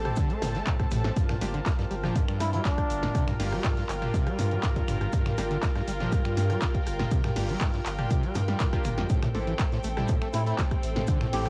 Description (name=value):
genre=acid house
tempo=121 BPM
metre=4/4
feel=straight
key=unclear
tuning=A4 = 440 Hz
part: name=string machine, full ensemble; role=sustained chords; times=0.0-11.5 s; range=G3 to C5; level=-42 LUFS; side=equal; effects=none
part: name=saturated sub bass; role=bass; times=0.0-11.5 s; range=G1 to A2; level=-34 LUFS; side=equal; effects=sidechain pumping
part: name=dark studio string section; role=texture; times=0.0-11.5 s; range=C4 to A5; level=-38 LUFS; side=equal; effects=sidechain pumping, cassette tape
part: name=band-passed chord stab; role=stabs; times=0.1-11.5 s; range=Bb3 to A4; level=-45 LUFS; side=equal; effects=chorus, cassette tape, tape echo
part: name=punchy analog drum machine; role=drums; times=0.1-11.5 s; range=finger snaps, handclaps, hi-hat, rim click, snare drum, toms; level=-36 LUFS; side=equal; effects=cassette tape
part: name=overdriven acid bass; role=riff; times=0.2-11.5 s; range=G1 to Bb3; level=-35 LUFS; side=equal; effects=distortion, tube saturation, analog chorus, cassette tape, tape echo
part: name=electronic kick drum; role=drums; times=0.2-11.2 s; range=none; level=-29 LUFS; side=equal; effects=cassette tape
part: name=natural country drum kit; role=drums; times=0.2-11.5 s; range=hi-hat, shaker, snare drum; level=-46 LUFS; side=equal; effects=sidechain pumping on hats, high-pass filter on hats, cassette tape, high-pass filter on snare, sidechain pumping on perc, high-pass filter on perc, high-pass filter on room
part: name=trumpet with plunger mute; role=melody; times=2.4-3.3, 10.3-11.5 s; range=D4 to G4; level=-35 LUFS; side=equal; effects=tape echo
room=studio ambience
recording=home recording on cassette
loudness=-27 LUFS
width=mono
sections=0.0-11.5 A section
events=none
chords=0.0 Am7; 1.2 Gm7; 9.1 Am7